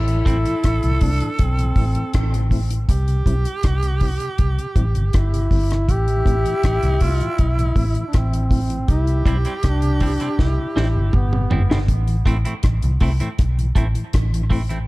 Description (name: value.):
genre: dub reggae.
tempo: 80 BPM.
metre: 4/4.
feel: straight.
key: A minor.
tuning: A4 = 440 Hz.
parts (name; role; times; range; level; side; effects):
mellow duduk; melody; 0.0-11.8 s; B3 to G4; -25 LUFS; left 1 dB; dub echo.
raspy tenor saxophone; second line; 0.0-11.5 s; E4 to A4; -29 LUFS; right 3 dB; dub echo.
vintage muted fingered electric bass; bass; 0.0-14.8 s; G1 to C2; -19 LUFS; equal; none.
mellow tonewheel organ; accompaniment; 0.1-14.8 s; A2 to E4; -30 LUFS; left 2 dB; chorus vibrato, slow rotary speaker.
deep reggae drum kit; drums; 0.1-14.9 s; hi-hat, kick drum, rim click, snare drum, toms; -20 LUFS; equal; none.
clean electric guitar; accompaniment; 0.3-0.4, 9.3-14.8 s; G3 to E4; -31 LUFS; right 2 dB; dub echo.
room: small room ambience.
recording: dark, warm production.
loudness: -17 LUFS.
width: side -20 dB against mid.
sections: 0.0-11.9 A section; 11.9-14.9 A section.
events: break 0.0-8.9; drum fill 10.4-11.9.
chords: 0.0 Am; 2.9 C; 5.9 Am; 8.9 C; 11.9 Am.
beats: 0.64 1.39 2.14 | 2.89 3.63 4.38 5.13 | 5.88 6.63 7.38 8.13 | 8.88 9.63 10.38 11.13 | 11.88 12.63 13.38 14.13.